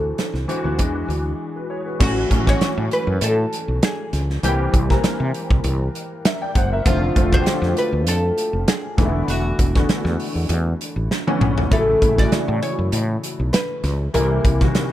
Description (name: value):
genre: polished 1980s jazz-funk pop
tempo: 99 BPM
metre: 4/4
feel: swing 54% on 16ths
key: unclear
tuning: A4 = 441 Hz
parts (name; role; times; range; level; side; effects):
- oud; melody; 0.0-14.7 s; F4 to D5; -24 LUFS; equal; slapback echo
- warm grand piano; accompaniment; 0.0-14.9 s; C3 to G5; -24 LUFS; left 1 dB; ensemble chorus
- woody fretless electric bass; bass; 0.0-14.8 s; E1 to C3; -21 LUFS; equal; none
- modern studio drum kit; drums; 0.2-14.9 s; crash cymbal, hi-hat, kick drum, snare drum, toms; -20 LUFS; equal; none
room: small room ambience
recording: none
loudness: -17 LUFS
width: side -13 dB against mid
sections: 0.0-2.0 A section; 2.0-14.9 B section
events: break 1.4-2.0; drum fill 11.1-11.7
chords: 0.0 D9; 0.8 E9; 2.0 A6; 4.4 C7; 6.9 F6; 9.0 E7sus4; 11.7 A6; 14.1 C7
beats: 0.18 0.79 1.40 | 2.00 2.61 3.22 3.82 | 4.43 5.04 5.64 6.25 | 6.86 7.46 8.07 8.68 | 9.29 9.89 10.50 11.11 | 11.71 12.32 12.93 13.54 | 14.14 14.75